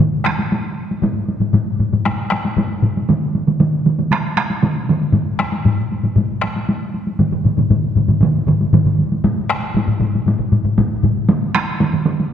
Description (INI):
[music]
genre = japanese traditional, taiko drum ensemble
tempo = 117 BPM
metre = 4/4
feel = straight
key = none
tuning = none
[part]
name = taiko ensemble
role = percussion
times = 0.0-12.2 s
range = none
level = -17 LUFS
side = right 4 dB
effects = none
[part]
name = taiko ensemble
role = percussion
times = 0.2-11.2 s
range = none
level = -18 LUFS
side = left 3 dB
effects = none
[part]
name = solo taiko drums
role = percussion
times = 0.3-12.3 s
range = none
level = -20 LUFS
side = equal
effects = none
[sound]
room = wet scoring stage reverb, RT60 1.9 s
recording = dark, warm production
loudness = -15 LUFS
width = side -9 dB against mid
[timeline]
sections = 0.0-9.2 A section; 9.2-12.3 B section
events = none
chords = none